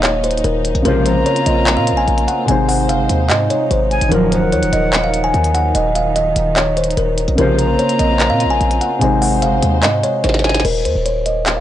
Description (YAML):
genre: hip hop, trap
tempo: 147 BPM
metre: 4/4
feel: half-time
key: Eb dorian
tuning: A4 = 439 Hz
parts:
  - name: kalimba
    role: melody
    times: 0.0-11.6 s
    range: Bb4 to Ab5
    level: -17 LUFS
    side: left 1 dB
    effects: low-pass filter
  - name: dark concert grand piano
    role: accompaniment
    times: 0.0-10.7 s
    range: C3 to C5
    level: -21 LUFS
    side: equal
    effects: low-pass filter
  - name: dark studio string section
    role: sustained chords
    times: 0.0-10.6 s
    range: Eb3 to C5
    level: -24 LUFS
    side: equal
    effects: none
  - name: hard-hitting 808-style bass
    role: bass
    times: 0.0-11.6 s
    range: Eb1 to Bb2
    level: -19 LUFS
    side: equal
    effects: none
  - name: glitchy drum kit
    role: drums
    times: 0.0-11.6 s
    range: crash cymbal, handclaps, hi-hat, snare drum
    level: -20 LUFS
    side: equal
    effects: none
  - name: analog synth brass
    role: stabs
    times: 0.9-1.1, 4.1-4.4, 7.4-7.7 s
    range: Bb1 to F3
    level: -20 LUFS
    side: equal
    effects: chorus
  - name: silver concert flute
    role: second line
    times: 1.1-10.6 s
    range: Gb5 to Bb5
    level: -23 LUFS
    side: left 2 dB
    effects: analog delay
room: little or no reverb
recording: dry, gritty hardware recording, nothing above 10.4 kHz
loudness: -13 LUFS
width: side -12 dB against mid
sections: 0.0-10.6 A section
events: drum fill 10.2-10.6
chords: 0.0 Ebmadd9; 0.9 Bbmadd9; 2.5 Ab; 4.1 Ebmadd9; 7.4 Bbmadd9; 9.0 Ab; 10.6 Eb5